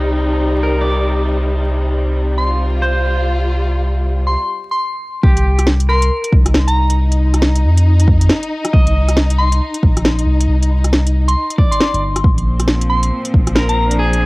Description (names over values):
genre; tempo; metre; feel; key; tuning
future garage; 137 BPM; 4/4; swing 62% on 16ths; C minor; A4 = 440 Hz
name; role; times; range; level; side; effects
warm studio string section; sustained chords; 0.0-14.3 s; Bb2 to F4; -22 LUFS; left 1 dB; sidechain pumping, cassette tape
soft dub sub bass; bass; 0.0-14.3 s; G1 to F2; -14 LUFS; equal; tube saturation, sidechain pumping
electric guitar at the edge of break-up; accompaniment; 0.6-14.3 s; G4 to Eb5; -22 LUFS; right 1 dB; harmonic tremolo, sidechain pumping, cassette tape, tape echo
soft synth bell; melody; 2.4-14.0 s; Bb5 to C6; -21 LUFS; equal; chorus, phaser, cassette tape, analog delay
electronic kick drum; drums; 5.2-13.4 s; none; -13 LUFS; equal; overdrive, cassette tape
organic electronic drum kit; drums; 5.4-14.2 s; hi-hat, rim click, snare drum; -17 LUFS; equal; overdrive, cassette tape
room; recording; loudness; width
little or no reverb; home recording on cassette, vinyl crackle; -12 LUFS; side -22 dB against mid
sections
0.0-5.2 A section; 5.2-14.3 B section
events
break 4.4-5.2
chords
0.0 Cm; 5.2 Cm7; 12.2 Bb